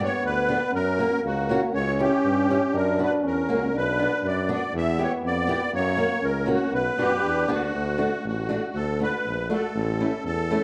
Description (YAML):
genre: alpine folk, alpine dance band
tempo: 120 BPM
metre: 2/4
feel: straight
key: B harmonic minor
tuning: A4 = 441 Hz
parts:
  - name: musette accordion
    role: melody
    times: 0.0-10.6 s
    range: F#4 to E5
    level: -29 LUFS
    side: equal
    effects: none
  - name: clear euphonium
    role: second line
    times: 0.0-7.7 s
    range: A#3 to D4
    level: -29 LUFS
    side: equal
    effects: none
  - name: fingerpicked old ladder-braced acoustic guitar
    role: accompaniment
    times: 0.0-10.6 s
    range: A3 to G4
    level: -31 LUFS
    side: equal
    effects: none
  - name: clear tuba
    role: bass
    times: 0.0-10.6 s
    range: A1 to G2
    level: -31 LUFS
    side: equal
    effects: none
room: wet large studio reverb, RT60 1.3 s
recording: band playing live in one room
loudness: -24 LUFS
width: mono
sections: 0.0-7.7 A section; 7.7-10.6 B section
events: none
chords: 0.0 G; 0.7 F#; 1.7 C#dim; 2.7 Bm/F#; 3.2 F#; 3.7 Bm; 4.7 Em; 5.7 F#; 6.7 Bm; 7.7 D; 9.7 A